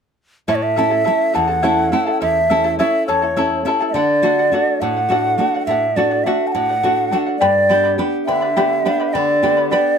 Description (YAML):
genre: andean folk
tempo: 69 BPM (dotted quarters)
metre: 6/8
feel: straight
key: unclear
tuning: A4 = 440 Hz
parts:
  - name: mellow large quena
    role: melody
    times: 0.5-10.0 s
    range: C#5 to A5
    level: -17 LUFS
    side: right 1 dB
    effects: none
  - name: charango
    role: accompaniment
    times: 0.5-10.0 s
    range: E4 to B5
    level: -21 LUFS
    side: left 4 dB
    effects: none
  - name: nylon-string guitar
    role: accompaniment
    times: 0.5-10.0 s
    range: E2 to G4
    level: -20 LUFS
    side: right 1 dB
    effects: none
room: light reverb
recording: close, detailed microphones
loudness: -14 LUFS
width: side -6 dB against mid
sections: 0.5-10.0 A section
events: none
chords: 0.5 A; 4.0 D; 7.4 G